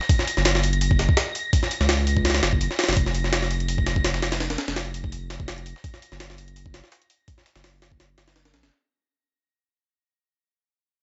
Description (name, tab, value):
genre	drum and bass, jungle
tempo	167 BPM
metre	4/4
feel	swing 54% on 16ths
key	unclear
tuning	A4 = 444 Hz
part	dusty soul sampler-style drum kit	drums	0.0-8.7 s	hi-hat, snare drum	-36 LUFS	equal	none
part	wind-like tuned noise texture	texture	0.0-8.7 s	A#6	-35 LUFS	equal	built-in reverb
part	jungle sampler-style drum kit	drums	0.1-8.7 s	hi-hat, kick drum, snare drum	-25 LUFS	equal	studio reverb
part	saturated sub bass	bass	0.4-8.7 s	E#1 to C#2	-28 LUFS	equal	none
room	digital ambience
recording	nothing above 7.8 kHz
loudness	-23 LUFS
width	mono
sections	0.0-8.7 A section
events	fade-out 0.0-8.7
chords	0.1 F#; 3.0 A#5/E#; 5.8 F#